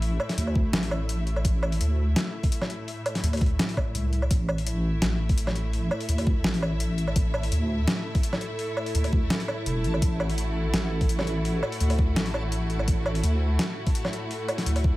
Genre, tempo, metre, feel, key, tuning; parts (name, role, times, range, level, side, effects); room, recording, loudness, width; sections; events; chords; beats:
half-time drum and bass; 168 BPM; 4/4; swing 53% on 16ths, half-time; A4 = 444 Hz
rich studio string section; sustained chords; 0.0-15.0 s; A2 to E5; -34 LUFS; equal; sidechain pumping
deep soft wobble bass; bass; 0.0-15.0 s; E1 to D2; -26 LUFS; equal; chorus
boom bap sampler-style drum kit; drums; 0.0-14.8 s; hi-hat, snare drum, woodblock; -29 LUFS; equal; studio reverb
electronic kick drum; drums; 0.6-14.9 s; -24 LUFS; equal; overdrive, studio reverb
backwards swelling texture; texture; 5.6-15.0 s; A4; -38 LUFS; right 1 dB; built-in reverb
little or no reverb; -23 LUFS; side -18 dB against mid
0.0-4.3 A section; 4.3-15.0 A section
drop 0.0-4.3, 4.3-15.0
0.0 A5
| 0.02 0.38 0.73 1.09 | 1.45 1.81 2.16 2.52 | 2.88 3.23 3.59 3.95 | 4.31 4.66 5.02 5.38 | 5.74 6.09 6.45 6.81 | 7.16 7.52 7.88 8.23 | 8.59 8.95 9.31 9.66 | 10.02 10.38 10.73 11.09 | 11.45 11.81 12.16 12.52 | 12.88 13.23 13.59 13.95 | 14.31 14.66